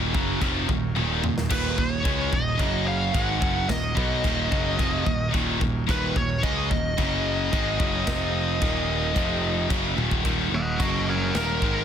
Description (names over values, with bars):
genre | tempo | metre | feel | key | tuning
heavy metal | 110 BPM | 4/4 | straight | Eb minor | A4 = 440 Hz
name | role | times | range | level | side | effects
pipe organ, clarinet reed | sustained chords | 0.0-11.8 s | F3 to Gb5 | -39 LUFS | left 4 dB | none
crunchy overdriven guitar | riff | 0.0-11.8 s | Eb2 to Db4 | -32 LUFS | equal | none
heavy high-gain guitar | riff | 0.0-11.8 s | Eb2 to Db4 | -30 LUFS | right 12 dB | distortion
scooped high-gain guitar | riff | 0.0-11.8 s | Eb2 to Db4 | -30 LUFS | left 12 dB | distortion
modern bright picked electric bass | bass | 0.0-11.8 s | Eb1 to Db2 | -29 LUFS | equal | none
modern studio drum kit | drums | 0.1-11.8 s | china cymbal, crash cymbal, kick drum, snare drum, toms | -28 LUFS | equal | soft clipping on snare
high-gain lead guitar | melody | 1.5-11.8 s | Gb4 to Gb5 | -28 LUFS | equal | distortion, ping-pong delay
room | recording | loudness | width
studio ambience | dense, heavily limited modern master | -22 LUFS | side -8 dB against mid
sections
0.0-10.3 A section; 10.3-11.8 B section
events
half time 0.0-10.3; drum fill 1.0-1.5, 10.0; lead electric guitar solo 10.3-11.8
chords
0.0 Ebm; 2.6 Gb5; 3.1 Ebm; 7.0 Gb5; 7.5 Ebm; 8.1 F5; 8.6 Ebm; 9.2 F5; 9.7 Ebm; 10.8 Gb5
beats
0.41 0.96 | 1.51 2.06 2.60 3.15 | 3.70 4.24 4.79 5.34 | 5.88 6.43 6.98 7.53 | 8.07 8.62 9.17 9.72 | 10.27 10.81 11.36